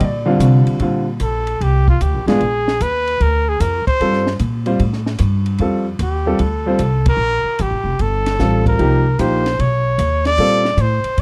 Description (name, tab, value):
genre	jazz, small-group swing and bop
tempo	150 BPM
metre	4/4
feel	swing 67% on 8ths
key	Bb major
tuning	A4 = 440 Hz
part	clear concert grand piano	accompaniment	0.0-10.6 s	D3 to D5	-20 LUFS	equal	none
part	upright bass	bass	0.0-11.2 s	F1 to C3	-20 LUFS	equal	none
part	compact cocktail drum kit	drums	0.0-11.2 s	hi-hat, kick drum, ride cymbal, snare drum	-26 LUFS	equal	none
part	clear trumpet	melody	1.2-11.2 s	F4 to D5	-21 LUFS	equal	none
room	small room reverb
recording	dry, close 1970s-style studio recording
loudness	-17 LUFS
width	mono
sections	0.8-11.2 A section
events	band accent 7.0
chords	0.0 Bb; 0.8 Bbmaj9; 2.4 Bb7b9; 4.0 Gm11; 5.6 F7; 7.2 Bb5; 8.0 Gsus2; 8.8 Cm7; 9.6 Badd9; 10.4 Bbmaj9